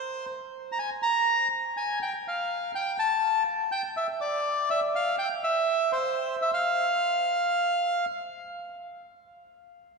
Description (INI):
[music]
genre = tango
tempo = 124 BPM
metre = 4/4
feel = rubato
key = unclear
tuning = A4 = 440 Hz
[part]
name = bandoneon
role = solo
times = 0.0-8.1 s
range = C5 to Bb5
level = -25 LUFS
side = equal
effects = none
[sound]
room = wet cathedral reverb, RT60 4.5 s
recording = recorded in a church or concert hall, small room reverb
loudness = -25 LUFS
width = side -3 dB against mid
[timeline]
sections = 0.0-8.6 A section; 8.6-10.0 B section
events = none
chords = none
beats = 0.30 | 0.79 1.27 1.76 2.24 | 2.73 3.21 3.70 4.18 | 4.67 5.15 5.64 6.12 | 6.61 7.09 7.58